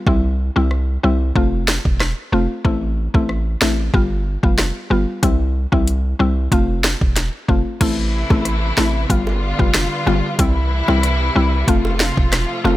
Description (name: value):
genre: dancehall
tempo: 93 BPM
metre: 4/4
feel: straight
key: A minor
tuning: A4 = 440 Hz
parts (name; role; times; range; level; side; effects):
- mallet-like synth pluck; accompaniment; 0.0-12.8 s; G3 to F4; -20 LUFS; left 2 dB; chorus
- hard-hitting 808-style bass; bass; 0.1-12.8 s; E1 to C2; -19 LUFS; equal; none
- afro-pop drum kit; drums; 0.1-12.5 s; crash cymbal, hi-hat, kick drum, rim click, snare drum; -18 LUFS; equal; none
- warm studio string section; sustained chords; 7.8-12.8 s; C3 to F4; -22 LUFS; left 1 dB; sidechain pumping
- bongos; percussion; 8.3-12.8 s; none; -29 LUFS; right 3 dB; none
room: little or no reverb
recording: none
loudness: -15 LUFS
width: side -16 dB against mid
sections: 0.0-7.8 A section; 7.8-12.8 B section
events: none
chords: 0.1 C; 1.4 F; 2.6 Am; 3.9 G7; 5.2 C; 6.5 F; 7.8 Am; 9.1 G7; 10.4 C; 11.7 F